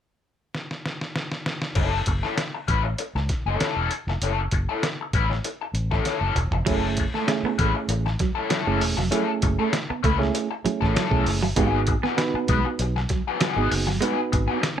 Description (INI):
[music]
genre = funk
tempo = 98 BPM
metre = 4/4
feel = straight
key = F# dorian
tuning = A4 = 440 Hz
[part]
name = trip hop sampler-style drum kit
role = drums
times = 0.5-14.8 s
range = crash cymbal, hi-hat, kick drum, snare drum, toms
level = -26 LUFS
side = equal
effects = none
[part]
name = raw garage guitar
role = accompaniment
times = 1.8-14.7 s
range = B3 to B4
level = -27 LUFS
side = left 6 dB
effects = wah, overdrive
[part]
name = vintage muted fingered electric bass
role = bass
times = 1.8-14.5 s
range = E1 to C#2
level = -26 LUFS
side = equal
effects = none
[part]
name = electric guitar at the edge of break-up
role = riff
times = 6.7-14.6 s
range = F#3 to B3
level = -28 LUFS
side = right 6 dB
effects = tremolo
[part]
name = reed electric piano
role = stabs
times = 6.7-14.7 s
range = A3 to B4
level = -26 LUFS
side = right 6 dB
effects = fast tremolo
[sound]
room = light reverb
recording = none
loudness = -22 LUFS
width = side -9 dB against mid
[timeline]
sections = 0.0-1.8 A section; 1.8-6.7 B section; 6.7-14.8 C section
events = drum fill 0.5-1.8, 6.1-6.7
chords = 0.0 N.C.; 1.8 F#m7; 11.6 G#m7